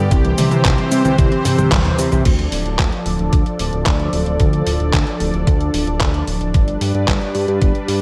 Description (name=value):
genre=italo disco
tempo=112 BPM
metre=4/4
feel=straight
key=D dorian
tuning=A4 = 442 Hz
part: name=lush unison pad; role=sustained chords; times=0.0-8.0 s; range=E3 to D5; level=-23 LUFS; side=equal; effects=chorus, phaser
part: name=warbly dusty pluck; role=arpeggios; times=0.0-7.9 s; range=C3 to C4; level=-30 LUFS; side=equal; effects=none
part: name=fat analog bass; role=bass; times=0.0-8.0 s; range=D1 to C3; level=-22 LUFS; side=equal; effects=none
part: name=detuned 8-bit digital drum machine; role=drums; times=0.1-8.0 s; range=cabasa, congas, crash cymbal, handclaps, hi-hat, toms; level=-24 LUFS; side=equal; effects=studio reverb, gated reverb
part: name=electronic kick drum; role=drums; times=0.1-7.7 s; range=none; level=-19 LUFS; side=equal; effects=studio reverb
room=light reverb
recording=none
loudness=-17 LUFS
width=mono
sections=0.0-2.3 A section; 2.3-8.0 B section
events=drum fill 1.5-2.3; band accent 1.7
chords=0.1 C; 2.3 Dm; 6.5 G